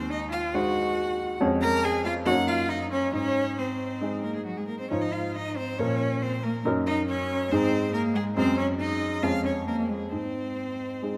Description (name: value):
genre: quick classical-period movement for piano trio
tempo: 138 BPM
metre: 4/4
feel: straight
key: unclear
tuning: A4 = 436 Hz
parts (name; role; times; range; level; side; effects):
- clear violin; melody; 0.0-11.2 s; Gb4 to Bb5; -35 LUFS; equal; none
- rich cello; second line; 0.0-11.2 s; Gb3 to Bb4; -31 LUFS; equal; none
- warm baby grand piano; accompaniment; 0.0-11.2 s; Eb2 to Db5; -30 LUFS; equal; none
room: moderate concert hall reverb, RT60 2.3 s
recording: close, detailed microphones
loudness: -27 LUFS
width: mono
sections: 0.0-11.2 A section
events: none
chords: 0.0 Ab7/Eb; 1.4 Db/F; 2.3 Ebm7/Gb; 3.1 Ab; 4.9 Fm/Ab; 5.8 Bbm; 6.7 Ebm/Gb; 7.5 Ab; 8.4 Ab7/Gb; 9.2 Db/F; 10.1 Ab